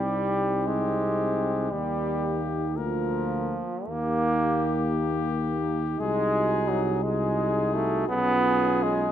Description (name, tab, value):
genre	classical, hymn-like piece for brass band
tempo	57 BPM (dotted quarters)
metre	6/8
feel	rubato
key	unclear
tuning	A4 = 443 Hz
part	warm cornet	melody	0.0-9.1 s	G4 to Bb4	-32 LUFS	left 9 dB	none
part	mellow French horn section	second line	0.0-9.1 s	Eb4 to F#4	-32 LUFS	right 6 dB	none
part	brilliant trombone	accompaniment	0.0-9.1 s	F3 to B3	-27 LUFS	right 2 dB	none
part	mellow trombone section	accompaniment	0.0-9.1 s	Bb3 to D#4	-34 LUFS	left 3 dB	none
part	mellow tuba	bass	0.0-9.1 s	B1 to Eb2	-30 LUFS	equal	none
room	light reverb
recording	close, detailed microphones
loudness	-23 LUFS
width	side -10 dB against mid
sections	0.0-9.1 A section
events	none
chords	0.0 Cm; 1.7 Eb; 2.8 Bb/D; 3.9 Eb; 6.0 G#7/B#; 8.1 C#7/B